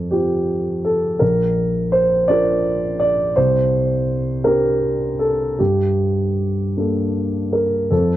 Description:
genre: neoclassical minimalist piano.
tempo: 51-56 BPM (dotted quarters).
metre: 6/8.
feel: rubato.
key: G minor.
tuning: A4 = 439 Hz.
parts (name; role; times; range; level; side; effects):
dark grand piano; solo; 0.0-8.2 s; Bb1 to D5; -16 LUFS; equal; none.
room: light reverb.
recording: none.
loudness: -16 LUFS.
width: side -13 dB against mid.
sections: 0.0-8.2 A section.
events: none.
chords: 0.0 Fsus2; 1.2 Bb; 3.4 Csus2; 5.6 Gmadd9.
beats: 0.12 | 1.21 2.28 | 3.37 4.45 | 5.59 6.74 | 7.91.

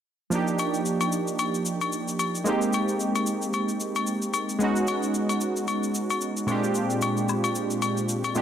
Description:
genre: amapiano.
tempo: 112 BPM.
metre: 4/4.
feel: swing 58% on 16ths.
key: Eb major.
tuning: A4 = 441 Hz.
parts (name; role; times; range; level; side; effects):
warm analog keys; accompaniment; 0.3-8.4 s; Bb2 to G4; -25 LUFS; right 1 dB; chorus.
shaker; drums; 0.3-8.4 s; none; -36 LUFS; left 1 dB; none.
agogo bells and woodblock; percussion; 0.6-8.3 s; none; -31 LUFS; left 5 dB; none.
room: light reverb, small room reverb.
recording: dense, heavily limited modern master.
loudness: -24 LUFS.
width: side -9 dB against mid.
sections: 0.3-8.4 A section.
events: none.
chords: 0.3 Ebmaj9; 2.5 Abmaj7; 4.6 B69; 6.5 Bb13.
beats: | 0.32 0.86 1.39 1.93 | 2.46 3.00 3.54 4.07 | 4.61 5.14 5.68 6.21 | 6.75 7.29 7.82 8.36.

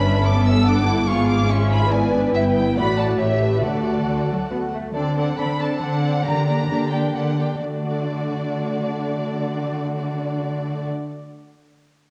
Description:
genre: quick classical-period movement for string orchestra.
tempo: 125-145 BPM.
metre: 3/4.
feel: straight.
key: D major.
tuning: A4 = 440 Hz.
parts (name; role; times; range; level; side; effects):
warm symphonic violin section; melody; 0.0-10.9 s; D5 to E6; -31 LUFS; equal; none.
rich chamber violin section; second line; 0.0-10.9 s; F#4 to G5; -29 LUFS; equal; none.
rich chamber viola section; accompaniment; 0.0-10.9 s; A3 to G4; -26 LUFS; equal; none.
rich chamber double bass section; bass; 0.0-4.7 s; G1 to D2; -27 LUFS; equal; none.
warm chamber cello section; bass; 0.0-10.9 s; G2 to B3; -26 LUFS; equal; none.
room: moderate scoring stage reverb, RT60 1.6 s.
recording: worn, warbling old tape, cassette tape, warbly pitch drift.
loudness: -21 LUFS.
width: mono.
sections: 0.0-4.9 A section; 4.9-7.6 B section; 7.6-10.5 C section.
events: slowing down 4.3-7.6.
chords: 0.0 Em7/G; 1.1 G#dim7; 2.3 Em/G; 2.8 D/A; 3.2 A7; 3.6 D; 4.9 D7; 6.3 Gm/D; 7.6 D.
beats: 0.24 0.66 | 1.08 1.50 1.92 | 2.35 2.77 3.20 | 3.64 4.08 4.51 | 4.95 5.38 5.82 | 6.25 6.69 7.15 | 7.63 8.10 8.57 | 9.04 9.52 9.99.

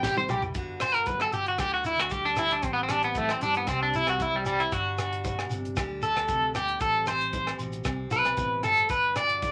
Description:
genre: highlife guitar band.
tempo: 115 BPM.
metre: 4/4.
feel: straight.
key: G major.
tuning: A4 = 438 Hz.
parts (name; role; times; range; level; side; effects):
picked steel-string acoustic guitar; accompaniment; 0.0-9.5 s; G2 to G4; -40 LUFS; equal; none.
electric guitar at the edge of break-up; arpeggios; 0.0-9.5 s; G3 to D5; -27 LUFS; equal; harmonic tremolo.
fingered electric bass; bass; 0.0-9.5 s; G1 to G2; -41 LUFS; equal; none.
tight funk drum kit; drums; 0.0-9.5 s; hi-hat, kick drum, rim click, snare drum, toms; -37 LUFS; equal; none.
congas; percussion; 0.0-9.5 s; none; -46 LUFS; equal; none.
shekere; percussion; 0.0-9.5 s; none; -42 LUFS; equal; none.
agogo bells; percussion; 0.3-9.3 s; none; -42 LUFS; equal; none.
room: moderate small room ambience, RT60 0.5 s.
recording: none.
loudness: -27 LUFS.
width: mono.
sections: 0.6-9.5 A section.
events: drum fill 0.0-0.6; clean electric guitar solo 0.6-9.5.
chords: 0.0 C; 0.6 Gmaj7; 1.6 Dsus4; 2.6 Am7; 3.7 C; 4.7 Gmaj7; 5.8 Dsus4; 6.8 Am7; 7.9 C; 8.9 Gmaj7.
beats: 0.03 | 0.55 1.08 1.60 2.12 | 2.64 3.16 3.69 4.21 | 4.73 5.25 5.78 6.30 | 6.82 7.34 7.86 8.39 | 8.91 9.43.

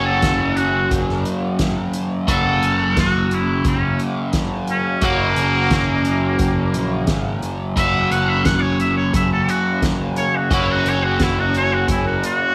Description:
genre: psychedelic rock.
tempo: 88 BPM.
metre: 4/4.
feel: straight.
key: F# mixolydian.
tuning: A4 = 440 Hz.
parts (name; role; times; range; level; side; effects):
trumpet with straight mute; melody; 0.0-12.5 s; A#3 to F#5; -23 LUFS; equal; slapback echo.
overdriven electric guitar; riff; 0.0-12.5 s; F#2 to F#4; -22 LUFS; equal; flanger.
growling picked electric bass; bass; 0.0-12.2 s; F#1 to A#1; -26 LUFS; equal; overdrive.
soft-mallet drum kit; drums; 0.2-12.4 s; hi-hat, kick drum, snare drum; -26 LUFS; equal; none.
room: light reverb, small room ambience.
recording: none.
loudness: -19 LUFS.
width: mono.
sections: 0.0-12.5 A section.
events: muted trumpet solo 0.0-12.5.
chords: 0.0 F#.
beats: 0.22 0.91 1.59 | 2.28 2.97 3.65 4.34 | 5.03 5.71 6.40 7.08 | 7.77 8.45 9.14 9.82 | 10.51 11.20 11.88.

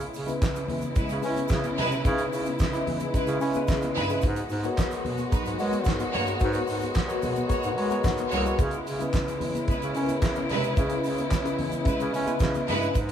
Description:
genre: disco.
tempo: 110 BPM.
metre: 4/4.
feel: straight.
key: C# dorian.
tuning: A4 = 440 Hz.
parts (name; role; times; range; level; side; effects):
warm studio string section; sustained chords; 0.0-13.1 s; C#3 to F#4; -32 LUFS; left 1 dB; none.
warm bass clarinet; bass; 0.0-13.1 s; B#1 to C#4; -32 LUFS; right 1 dB; none.
damped 70s drum kit; drums; 0.0-13.1 s; handclaps, hi-hat, kick drum, snare drum; -28 LUFS; right 1 dB; none.
tube shaker; percussion; 0.1-13.1 s; none; -49 LUFS; right 8 dB; none.
congas; percussion; 0.2-13.1 s; none; -38 LUFS; left 4 dB; none.
tine electric piano; accompaniment; 0.3-13.0 s; C#3 to C#5; -29 LUFS; left 2 dB; fast stereo tremolo.
clear symphonic string section; second line; 1.0-12.9 s; F#3 to C#5; -32 LUFS; right 2 dB; none.
room: wet large studio reverb, RT60 1.4 s.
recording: band playing live in one room.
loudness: -24 LUFS.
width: side -9 dB against mid.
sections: 0.0-13.1 A section.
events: none.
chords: 0.0 C#m7; 4.2 G#m11; 8.6 C#m7.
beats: 0.42 0.96 1.51 | 2.05 2.60 3.14 3.69 | 4.23 4.77 5.32 5.86 | 6.41 6.95 7.50 8.04 | 8.59 9.13 9.68 10.22 | 10.77 11.32 11.86 12.41 | 12.96.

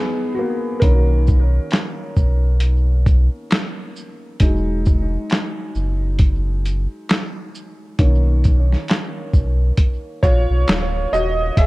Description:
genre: lo-fi hip hop.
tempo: 67 BPM.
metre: 4/4.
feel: swing 60% on 16ths.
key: unclear.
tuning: A4 = 445 Hz.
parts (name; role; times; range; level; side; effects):
warm upright piano; accompaniment; 0.0-11.7 s; D#3 to E5; -24 LUFS; equal; low-pass filter, analog delay.
sub bass with octave; bass; 0.8-11.7 s; D1 to B1; -17 LUFS; equal; none.
lo-fi sampler-style drum kit; drums; 0.8-11.7 s; handclaps, hi-hat, kick drum, shaker, snare drum; -17 LUFS; equal; overdrive.
room: little or no reverb.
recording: echo-heavy mix.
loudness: -16 LUFS.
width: side -20 dB against mid.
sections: 0.0-11.7 A section.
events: upright piano solo 0.0-11.7.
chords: 0.0 Emaj9 (rootless); 0.8 Bmaj9; 4.4 Emaj9; 8.0 Bmaj9.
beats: | 0.82 1.72 2.61 3.51 | 4.40 5.30 6.20 7.09 | 7.99 8.88 9.78 10.67 | 11.57.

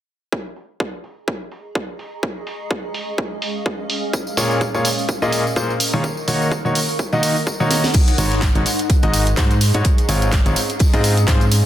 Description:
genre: piano house.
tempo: 126 BPM.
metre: 4/4.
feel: swing 56% on 16ths.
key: unclear.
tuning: A4 = 439 Hz.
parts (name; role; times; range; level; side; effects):
electronic kick drum; drums; 0.3-11.4 s; none; -19 LUFS; equal; overdrive, high-pass filter on kick, high-pass filter on room.
granular cloud pad; texture; 1.6-11.7 s; Ab3 to Db6; -27 LUFS; equal; built-in reverb, sidechain pumping.
house drum kit; drums; 0.6-11.6 s; crash cymbal, handclaps, hi-hat, snare drum; -24 LUFS; right 1 dB; overdrive, low-pass filter on hats, low-pass filter on snare, low-pass filter on cymbals, low-pass filter on room.
tambourine; percussion; 4.1-11.6 s; none; -28 LUFS; right 1 dB; none.
bright grand piano; riff; 4.4-11.4 s; Ab2 to Eb5; -20 LUFS; left 1 dB; sidechain pumping, tape echo.
soft-mallet drum kit; drums; 7.9-11.6 s; hi-hat, snare drum; -33 LUFS; left 4 dB; none.
solid FM bass; bass; 8.2-11.6 s; Ab1 to Ab2; -18 LUFS; equal; sidechain pumping.
room: light reverb, studio ambience.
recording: dense, heavily limited modern master.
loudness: -16 LUFS.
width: side -12 dB against mid.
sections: 0.3-7.9 A section; 7.9-11.7 B section.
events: fade-in on ambient pad 0.3-7.9; drum fill 7.7.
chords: 0.3 Absus4; 2.2 Db/Ab; 3.9 Bbm7; 6.0 Ebm7; 7.9 Ab7sus4; 9.8 Dbmaj7/Ab.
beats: | 0.33 0.80 1.28 1.75 | 2.23 2.71 3.18 3.66 | 4.13 4.61 5.09 5.56 | 6.04 6.52 6.99 7.47 | 7.95 8.42 8.90 9.37 | 9.85 10.32 10.80 11.28.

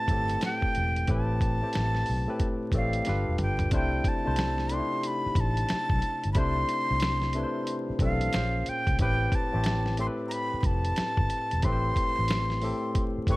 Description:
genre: R&B, neo-soul.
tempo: 91 BPM.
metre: 4/4.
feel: swing 62% on 16ths.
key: C major.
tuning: A4 = 441 Hz.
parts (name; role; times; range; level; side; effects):
breathy reedy jazz flute; melody; 0.0-13.4 s; F5 to Db6; -30 LUFS; equal; none.
barky tine electric piano; accompaniment; 0.0-13.4 s; A2 to D5; -32 LUFS; left 1 dB; overdrive.
vintage muted fingered electric bass; bass; 0.1-13.4 s; E1 to C2; -29 LUFS; equal; none.
dusty soul sampler-style drum kit; drums; 0.1-13.4 s; hi-hat, kick drum, snare drum, toms; -29 LUFS; equal; none.
room: digital ambience.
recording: dark, warm production, vinyl crackle.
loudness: -25 LUFS.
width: side -20 dB against mid.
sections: 0.0-3.7 A section; 3.7-13.4 B section.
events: drum fill 3.1-3.7.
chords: 0.0 Am9; 3.1 G13; 3.7 C6; 8.3 Bbm9; 9.0 Am9.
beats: 0.42 | 1.08 1.74 2.40 3.06 | 3.71 4.37 5.03 5.69 | 6.35 7.01 7.67 8.33 | 8.99 9.65 10.31 10.97 | 11.63 12.29 12.95.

